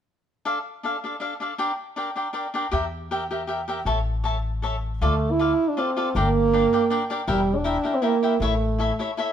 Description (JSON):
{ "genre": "mexican folk, mariachi", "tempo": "158 BPM", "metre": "3/4", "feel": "rubato", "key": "D minor", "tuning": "A4 = 438 Hz", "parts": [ { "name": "cavaquinho", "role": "accompaniment", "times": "0.5-9.3 s", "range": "D4 to A5", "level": "-26 LUFS", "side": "left 2 dB", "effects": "none" }, { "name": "upright bass", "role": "bass", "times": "2.7-8.9 s", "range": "E1 to E2", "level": "-26 LUFS", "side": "left 1 dB", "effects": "none" }, { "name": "clear French horn", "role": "melody", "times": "5.0-9.1 s", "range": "G3 to E4", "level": "-22 LUFS", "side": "right 4 dB", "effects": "none" } ], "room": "moderate stone room reverb, RT60 1.1 s", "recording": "band playing live in one room", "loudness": "-22 LUFS", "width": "side -9 dB against mid", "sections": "0.5-5.0 A section; 5.0-9.3 B section", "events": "none", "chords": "0.5 Dm; 1.6 Gm; 2.7 Edim; 3.9 A; 5.0 Dm; 6.2 Gm; 7.3 Edim; 8.4 A", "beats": "| 0.45 0.84 1.22 | 1.60 1.98 2.35 | 2.73 3.10 3.48 | 3.86 4.24 4.63 | 5.01 5.39 5.78 | 6.15 6.53 6.91 | 7.28 7.65 8.03 | 8.40 8.78 9.17" }